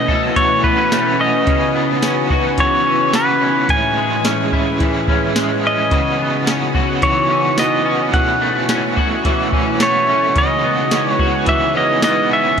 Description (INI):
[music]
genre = dream pop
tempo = 108 BPM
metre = 4/4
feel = straight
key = C# minor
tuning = A4 = 440 Hz
[part]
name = pedal steel guitar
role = melody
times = 0.0-12.6 s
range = B4 to G#5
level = -17 LUFS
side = equal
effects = tape echo
[part]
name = biting overdriven guitar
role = accompaniment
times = 0.0-12.6 s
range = A2 to F#4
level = -23 LUFS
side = right 6 dB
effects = tremolo, analog chorus
[part]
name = warbly tape-like pad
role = sustained chords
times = 0.0-12.6 s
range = A2 to B4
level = -22 LUFS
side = equal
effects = chorus, built-in reverb
[part]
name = electric guitar at the edge of break-up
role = arpeggios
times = 0.0-12.6 s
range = A2 to A4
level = -20 LUFS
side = left 3 dB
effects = ensemble chorus, tape echo
[part]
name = soft vintage rhythm box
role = drums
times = 0.1-12.6 s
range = hi-hat, kick drum, snare drum, tambourine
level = -20 LUFS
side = equal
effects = none
[sound]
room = moderate shimmer reverb, RT60 7.0 s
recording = none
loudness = -13 LUFS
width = side -7 dB against mid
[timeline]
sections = 0.0-12.6 A section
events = none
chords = 0.0 B9sus4; 1.5 C#m11; 3.7 Amaj7; 5.9 C#m11; 8.1 B9sus4; 10.4 C#m11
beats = 0.36 0.92 | 1.47 2.03 2.58 3.14 | 3.69 4.25 4.80 5.36 | 5.92 6.47 7.03 7.58 | 8.14 8.69 9.25 9.80 | 10.36 10.91 11.47 12.03 | 12.58